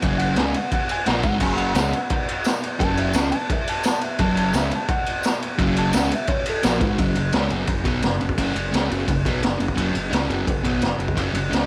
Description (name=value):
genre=garage rock duo or trio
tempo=172 BPM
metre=4/4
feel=straight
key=unclear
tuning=A4 = 440 Hz
part: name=fuzz guitar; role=riff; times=0.0-11.7 s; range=F#2 to C#4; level=-26 LUFS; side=equal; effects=distortion, cassette tape
part: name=fuzz fingered electric bass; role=bass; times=0.0-11.7 s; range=F#1 to C#2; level=-31 LUFS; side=equal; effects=overdrive
part: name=raw garage drum kit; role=drums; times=0.0-11.6 s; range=crash cymbal, kick drum, ride cymbal, snare drum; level=-25 LUFS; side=equal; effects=cassette tape
part: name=clean lap steel guitar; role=melody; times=0.2-7.0 s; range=F#4 to A5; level=-30 LUFS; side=equal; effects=cassette tape
part: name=tambourine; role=percussion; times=1.8-6.7 s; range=none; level=-38 LUFS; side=equal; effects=none
room=studio reverb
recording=home recording on cassette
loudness=-22 LUFS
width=mono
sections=0.0-7.0 A section; 7.0-11.7 B section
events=none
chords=0.0 F#; 7.0 F#5